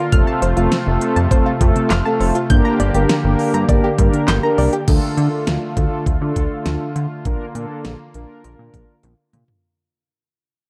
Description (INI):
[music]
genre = synth-pop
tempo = 101 BPM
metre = 4/4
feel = straight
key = D minor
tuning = A4 = 441 Hz
[part]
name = brassy analog pad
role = sustained chords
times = 0.0-9.6 s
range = C3 to G4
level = -26 LUFS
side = equal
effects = chorus
[part]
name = soft round pluck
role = arpeggios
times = 0.0-4.8 s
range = C3 to G6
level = -26 LUFS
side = equal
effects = chorus, tape echo
[part]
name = mellow synth brass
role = accompaniment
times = 0.1-9.0 s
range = A3 to Bb4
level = -23 LUFS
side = equal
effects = chorus
[part]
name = chorused synth bass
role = bass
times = 0.1-9.4 s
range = F1 to D3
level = -22 LUFS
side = equal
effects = none
[part]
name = pop drum kit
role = drums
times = 0.1-9.6 s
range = crash cymbal, handclaps, hi-hat, kick drum, snare drum, toms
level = -21 LUFS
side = equal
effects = none
[sound]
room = light reverb, digital ambience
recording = dark, warm production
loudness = -17 LUFS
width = mono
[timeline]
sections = 0.0-4.9 A section; 4.9-9.6 B section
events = fade-out 4.9-9.6; drum fill 9.0-9.6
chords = 0.1 F; 2.5 Gm; 4.9 Dm; 7.3 Bb